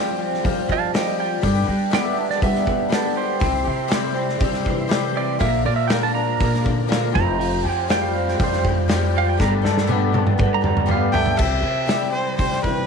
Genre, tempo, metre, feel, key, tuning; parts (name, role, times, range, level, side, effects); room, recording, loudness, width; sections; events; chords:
folk rock and heartland rock; 120 BPM; 4/4; straight; C major; A4 = 442 Hz
picked twelve-string acoustic guitar; accompaniment; 0.0-12.9 s; G2 to Bb4; -26 LUFS; left 15 dB
electric guitar through a small old amp; riff; 0.0-12.9 s; G2 to A4; -24 LUFS; equal; analog chorus
upright bass; bass; 0.0-12.9 s; F1 to G3; -24 LUFS; equal
loose indie drum kit; drums; 0.3-12.8 s; crash cymbal, hi-hat, kick drum, snare drum, toms; -24 LUFS; equal
pedal steel guitar; second line; 0.7-11.4 s; A4 to Bb5; -25 LUFS; right 15 dB
tonewheel organ; sustained chords; 3.4-11.4 s; F4 to C6; -34 LUFS; equal; slow rotary speaker, overdrive, chorus vibrato
rich erhu; melody; 11.1-12.9 s; B4 to G5; -24 LUFS; equal; slapback echo
small room ambience; 1960s-style stereo with parts hard left and right; -18 LUFS; side -5 dB against mid
0.0-11.4 A section; 11.4-12.9 B section
pedal steel guitar solo 0.0-11.4; drum fill 9.4-11.4
0.0 Fsus2; 1.4 G; 3.4 C; 5.4 Bb; 7.2 Fsus2; 9.4 Gadd9; 11.4 C